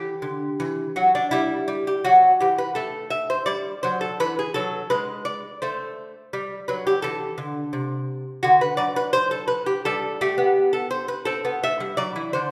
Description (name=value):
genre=classical, baroque-style dance for lute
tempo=84 BPM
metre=4/4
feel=rubato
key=G major from 8.4 s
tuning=A4 = 437 Hz
part: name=lute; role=solo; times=0.0-12.5 s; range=C3 to E5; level=-23 LUFS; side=equal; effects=none
room=wet recital hall reverb, RT60 1.5 s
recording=recorded in a church or concert hall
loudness=-23 LUFS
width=mono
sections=0.0-12.5 A section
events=none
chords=0.0 Em; 2.8 F#m7b5; 4.2 E; 5.6 Am; 8.4 D; 9.9 G; 11.3 Am7